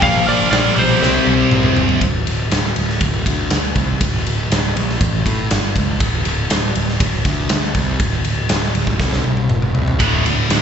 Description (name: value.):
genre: hard rock.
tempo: 120 BPM.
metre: 4/4.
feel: straight.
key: unclear.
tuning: A4 = 439 Hz.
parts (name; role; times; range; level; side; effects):
lightly driven lead guitar; melody; 0.0-1.7 s; C5 to F5; -19 LUFS; left 1 dB; plate reverb, slapback echo, analog delay.
nasal lead guitar with a parked wah; second line; 0.0-1.7 s; G4 to Bb4; -24 LUFS; right 5 dB; overdrive, plate reverb, slapback echo.
heavy high-gain guitar; riff; 0.0-2.0, 10.0-10.6 s; D2 to C5; -20 LUFS; left 1 dB; distortion.
overdriven semi-hollow guitar; riff; 0.0-2.0, 10.0-10.6 s; D2 to C4; -20 LUFS; left 10 dB; slapback echo.
scooped high-gain guitar; riff; 0.0-2.0, 10.0-10.6 s; D2 to C4; -21 LUFS; right 13 dB; distortion.
fuzz picked electric bass; bass; 0.0-10.6 s; D1 to A2; -19 LUFS; equal; overdrive.
big rock drum kit; drums; 0.0-10.6 s; hi-hat, kick drum, ride cymbal, snare drum, toms; -18 LUFS; equal; none.
room: little or no reverb.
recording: live gig heard through the venue's PA, club reverb, nothing above 8.0 kHz.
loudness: -14 LUFS.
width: side -8 dB against mid.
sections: 0.0-2.0 A section; 2.0-10.6 B section.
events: drum fill 1.0-2.0, 9.0-10.0.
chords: 0.0 Bb; 1.0 C; 2.0 N.C.; 9.5 F5; 10.0 D5.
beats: | 0.01 0.51 1.01 1.51 | 2.01 2.51 3.01 3.50 | 4.00 4.50 5.00 5.50 | 6.00 6.50 7.00 7.50 | 8.00 8.50 9.00 9.50 | 10.00 10.50.